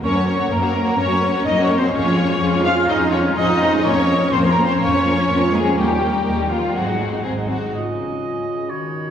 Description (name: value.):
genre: cinematic, heroic adventure film score.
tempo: 125 BPM.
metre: 4/4.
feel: straight.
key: Bb minor.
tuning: A4 = 442 Hz.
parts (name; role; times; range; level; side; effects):
dark symphonic violin section; melody; 0.0-7.2 s; F4 to F5; -24 LUFS; left 4 dB; none.
small flute group; second line; 0.0-9.1 s; F5 to F6; -24 LUFS; equal; none.
warm symphonic violin section; second line; 0.0-7.7 s; Db4 to Db5; -26 LUFS; left 3 dB; none.
warm symphonic viola section; accompaniment; 0.0-7.7 s; Eb3 to F4; -24 LUFS; equal; none.
clear symphonic double bass section; bass; 0.0-7.7 s; Ab1 to Gb2; -22 LUFS; equal; none.
warm studio cello section; bass; 0.0-7.2 s; F3 to F4; -22 LUFS; right 1 dB; none.
clear oboe; second line; 7.7-9.1 s; Db5 to Eb5; -29 LUFS; right 5 dB; none.
warm clarinet; second line; 7.7-9.1 s; F4 to Gb4; -27 LUFS; left 1 dB; none.
mellow French horn section; sustained chords; 7.7-9.1 s; Db3 to Eb3; -31 LUFS; left 2 dB; none.
room: wet church reverb, RT60 3.0 s.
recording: recorded in a church or concert hall, small room ambience.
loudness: -16 LUFS.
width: side -8 dB against mid.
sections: 0.0-7.7 A section; 7.7-9.1 B section.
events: none.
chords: 0.0 Gb; 1.9 Db/F; 3.8 Bbm/F; 5.8 Eb; 6.7 Ab7; 7.7 Dbadd9.